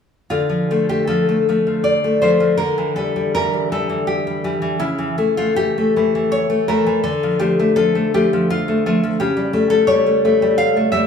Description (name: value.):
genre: romantic piece for solo classical guitar.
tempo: 81 BPM.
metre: 3/4.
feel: uneven beats, rubato.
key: D minor.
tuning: A4 = 441 Hz.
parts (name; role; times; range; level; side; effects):
nylon-string guitar; solo; 0.3-11.1 s; C#3 to F5; -15 LUFS; left 2 dB; none.
room: moderate recital hall reverb, RT60 1.4 s.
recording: studio reverb.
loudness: -15 LUFS.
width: side -7 dB against mid.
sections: 0.3-11.1 A section.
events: none.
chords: 0.3 Dm; 2.6 Gm69/D; 4.8 A7/C#; 7.0 Dm; 9.2 A7/C#.